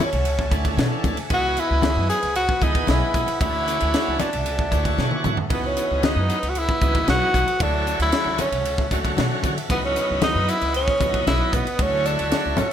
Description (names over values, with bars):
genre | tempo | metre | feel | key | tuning
electric jazz fusion | 115 BPM | 4/4 | straight | unclear | A4 = 440 Hz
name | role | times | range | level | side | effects
clear tenor saxophone | melody | 0.0-12.7 s | B3 to G#4 | -23 LUFS | equal | slapback echo, plate reverb
bright tonewheel organ | accompaniment | 0.0-12.7 s | D3 to D#5 | -28 LUFS | right 1 dB | slow rotary speaker, overdrive
string machine, violins | sustained chords | 0.0-12.7 s | A4 to D#6 | -33 LUFS | equal | ensemble chorus
upright bass | bass | 0.0-12.6 s | B1 to D3 | -25 LUFS | equal | none
crisp fusion drum kit | drums | 0.0-12.7 s | hi-hat, kick drum, ride cymbal, snare drum, toms | -25 LUFS | equal | none
congas | percussion | 0.0-12.7 s | none | -29 LUFS | left 4 dB | none
room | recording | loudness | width
light reverb | none | -19 LUFS | side -9 dB against mid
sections
0.0-12.7 A section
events
drum fill 5.0-5.5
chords
0.0 Dmaj9; 1.3 C#m11; 3.4 Dmaj9; 5.5 C#m11; 7.6 Dmaj9; 9.7 C#m11; 11.8 Dmaj9